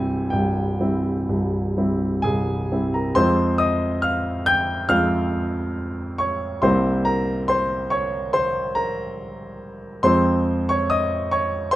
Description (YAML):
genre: classical, romantic character piece for solo piano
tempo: 61-76 BPM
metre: 4/4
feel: rubato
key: F minor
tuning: A4 = 439 Hz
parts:
  - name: warm grand piano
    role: solo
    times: 0.0-11.8 s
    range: C1 to G6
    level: -19 LUFS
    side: equal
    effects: none
room: light reverb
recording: close, detailed microphones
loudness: -19 LUFS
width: side -15 dB against mid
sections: 0.0-3.2 A section; 3.2-11.8 B section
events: none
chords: 0.0 C; 3.2 Fm; 6.6 C7; 10.0 Fm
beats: 0.33 1.30 2.25 | 3.17 4.05 4.92 5.78 | 6.64 7.50 8.35 9.19 | 10.05 10.91 11.73